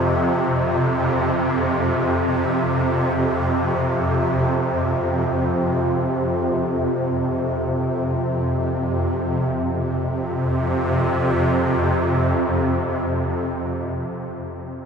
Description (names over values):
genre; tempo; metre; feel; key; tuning
ambient; free time; none; none; unclear; A4 = 440 Hz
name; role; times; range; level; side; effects
swarming drone; solo; 0.0-14.3 s; F2 to C3; -19 LUFS; equal; built-in reverb
room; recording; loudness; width
wet huge ambient reverb, RT60 8.0 s; in a vast, echoing space, cassette tape; -19 LUFS; side -6 dB against mid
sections
0.0-9.5 A section; 9.5-13.9 B section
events
none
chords
0.0 F5